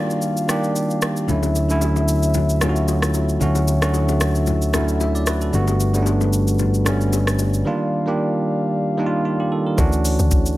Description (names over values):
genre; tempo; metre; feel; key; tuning
amapiano; 113 BPM; 4/4; swing 55% on 16ths; D major; A4 = 439 Hz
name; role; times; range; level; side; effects
bell-like tine electric piano; accompaniment; 0.0-10.6 s; D3 to E5; -20 LUFS; right 1 dB; none
dark French horn section; sustained chords; 0.0-10.6 s; D3 to F5; -28 LUFS; left 4 dB; none
smooth R&B drum kit; drums; 0.1-10.6 s; hi-hat, kick drum, rim click, shaker; -24 LUFS; equal; none
fingered electric bass; bass; 1.3-7.6 s; G1 to D2; -20 LUFS; equal; none
congas and bongos; percussion; 1.3-7.5 s; none; -31 LUFS; left 8 dB; none
woody log drum bass; bass; 9.8-10.6 s; D2; -19 LUFS; equal; none
room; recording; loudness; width
light reverb, digital ambience; none; -17 LUFS; side -17 dB against mid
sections
0.0-9.8 A section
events
kick muted 1.3-1.8; break 7.7-9.8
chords
0.0 Ebmaj9; 1.3 Dmaj9; 5.5 Gmaj9; 7.7 Ebmaj9; 9.8 Dmaj9